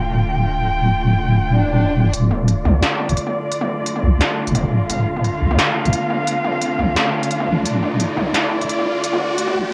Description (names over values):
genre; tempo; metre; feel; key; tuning
half-time drum and bass; 174 BPM; 4/4; swing 55% on 16ths, half-time; D minor; A4 = 439 Hz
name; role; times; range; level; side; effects
warm studio cello section; sustained chords; 0.0-9.7 s; D3 to G5; -24 LUFS; equal; vintage 12-bit sampler grit, low-pass filter
deep soft wobble bass; bass; 0.0-9.7 s; D1 to C2; -19 LUFS; equal; chorus
swell and riser; sound effects; 1.5-9.7 s; none; -27 LUFS; equal; none
industrial drum kit; drums; 2.1-9.5 s; hi-hat, snare drum, toms; -24 LUFS; equal; high-pass filter on hats, low-pass filter on hats, cassette tape, high-pass filter on toms, low-pass filter on toms, high-pass filter on snare, low-pass filter on snare, high-pass filter on room, low-pass filter on room
room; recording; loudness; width
light reverb; home recording on cassette, high-pass filter; -18 LUFS; mono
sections
0.0-2.1 A section; 2.1-9.7 B section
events
swell 1.5-2.1; build-up 2.1-9.7; riser 2.1-9.7; filter sweep on cello section 2.1-9.7; filter sweep 2.1-9.7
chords
0.0 Dm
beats
0.07 0.41 | 0.76 1.10 1.45 1.79 | 2.14 2.48 2.83 3.17 | 3.52 3.86 4.21 4.55 | 4.90 5.24 5.58 5.93 | 6.28 6.62 6.96 7.31 | 7.65 8.00 8.34 8.69 | 9.03 9.38 9.72